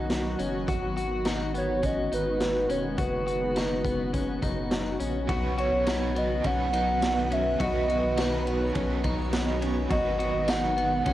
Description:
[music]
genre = dream pop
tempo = 104 BPM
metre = 4/4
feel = straight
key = B major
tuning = A4 = 439 Hz
[part]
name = granular cloud pad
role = sustained chords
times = 0.0-11.1 s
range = C#3 to F#4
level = -32 LUFS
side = right 1 dB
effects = built-in reverb, cassette tape
[part]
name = clean electric guitar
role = arpeggios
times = 0.0-11.1 s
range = B3 to F#4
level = -32 LUFS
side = left 5 dB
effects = wide subtle chorus, cassette tape, tape echo
[part]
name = round analog bass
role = bass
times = 0.0-11.1 s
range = E1 to B1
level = -33 LUFS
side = equal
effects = none
[part]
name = backwards swelling texture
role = texture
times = 0.5-11.1 s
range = B4 to C#5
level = -44 LUFS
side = left 1 dB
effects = none
[part]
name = raw garage drum kit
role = drums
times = 0.1-11.1 s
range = hi-hat, kick drum, ride cymbal, snare drum, tambourine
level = -32 LUFS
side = equal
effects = none
[part]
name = warbly nostalgic lead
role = melody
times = 1.6-11.1 s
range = B4 to F#5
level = -29 LUFS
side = right 1 dB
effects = chorus, tape echo
[part]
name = overdriven electric guitar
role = accompaniment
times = 5.3-11.1 s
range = G#2 to B4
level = -34 LUFS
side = right 6 dB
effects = tremolo, lush chorus, cassette tape
[sound]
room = light reverb, studio reverb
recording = home recording on cassette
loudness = -24 LUFS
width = side -14 dB against mid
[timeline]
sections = 0.0-5.3 A section; 5.3-11.1 B section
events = none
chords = 0.0 F#sus4; 0.7 G#m7; 3.0 F#sus4; 5.3 B; 9.9 G#m7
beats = 0.10 | 0.68 1.25 1.83 2.41 | 2.98 3.56 4.14 4.72 | 5.29 5.87 6.45 7.02 | 7.60 8.18 8.75 9.33 | 9.91 10.48 11.06

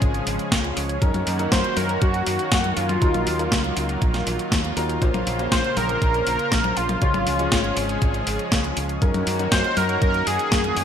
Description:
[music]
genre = italo disco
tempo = 120 BPM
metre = 4/4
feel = straight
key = unclear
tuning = A4 = 442 Hz
[part]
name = lush unison pad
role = sustained chords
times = 0.0-10.8 s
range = Db3 to C5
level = -28 LUFS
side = equal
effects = chorus
[part]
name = warm baby grand piano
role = stabs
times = 0.0-10.8 s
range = Bb2 to Db5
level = -30 LUFS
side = left 1 dB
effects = lush chorus
[part]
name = modern bright fingered electric bass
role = bass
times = 0.0-10.8 s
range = Ab1 to Gb2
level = -27 LUFS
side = equal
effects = tube saturation
[part]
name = clean 12-bit digital drum machine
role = drums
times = 0.0-10.8 s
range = hi-hat, snare drum, toms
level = -25 LUFS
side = left 1 dB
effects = overdrive, gated reverb
[part]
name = electronic kick drum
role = drums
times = 0.0-10.6 s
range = none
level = -22 LUFS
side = equal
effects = overdrive
[part]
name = wide unison lead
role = melody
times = 1.5-10.8 s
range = F4 to C5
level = -24 LUFS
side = equal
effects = analog chorus, cassette tape, ping-pong delay
[sound]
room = moderate plate reverb, RT60 1.6 s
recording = bright 1980s-style digital production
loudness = -19 LUFS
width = side -8 dB against mid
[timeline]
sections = 0.0-10.8 A section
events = none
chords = 0.0 Db; 1.0 Gb6; 3.0 Ebmadd9; 5.0 Bbmadd9; 7.0 Db; 9.0 Gb6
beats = 0.02 0.52 | 1.02 1.52 2.02 2.52 | 3.02 3.52 4.02 4.52 | 5.02 5.52 6.02 6.52 | 7.02 7.52 8.02 8.52 | 9.02 9.52 10.02 10.52

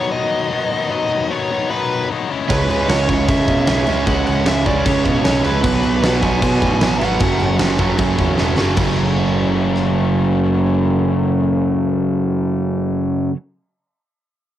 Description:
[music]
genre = punk rock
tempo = 153 BPM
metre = 4/4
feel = straight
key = F# minor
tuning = A4 = 440 Hz
[part]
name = nasal lead guitar with a parked wah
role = melody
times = 0.0-7.5 s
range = B4 to G#5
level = -22 LUFS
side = equal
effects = overdrive
[part]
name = biting overdriven guitar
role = riff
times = 0.0-13.4 s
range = F#2 to E4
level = -21 LUFS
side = left 7 dB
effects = cassette tape
[part]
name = overdriven semi-hollow guitar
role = riff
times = 2.5-13.4 s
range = F#2 to C#4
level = -18 LUFS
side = right 5 dB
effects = cassette tape
[part]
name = fuzz picked electric bass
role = bass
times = 2.5-13.3 s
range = E1 to C#3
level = -22 LUFS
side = equal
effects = overdrive
[part]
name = big rock drum kit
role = drums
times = 2.5-9.8 s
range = crash cymbal, kick drum, rim click, snare drum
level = -21 LUFS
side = equal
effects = none
[sound]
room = little or no reverb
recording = home recording on cassette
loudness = -15 LUFS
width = side -12 dB against mid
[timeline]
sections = 0.0-8.8 A section; 8.8-11.9 B section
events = drum fill 8.4-8.8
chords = 0.0 B; 2.3 C#m; 5.6 Bm; 7.2 F#m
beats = 0.13 0.52 | 0.91 1.31 1.70 2.09 | 2.49 2.88 3.27 3.67 | 4.06 4.46 4.85 5.24 | 5.63 6.03 6.42 6.81 | 7.21 7.60 7.99 8.38 | 8.78 9.17 9.56 9.95 | 10.35 10.74 11.13 11.52

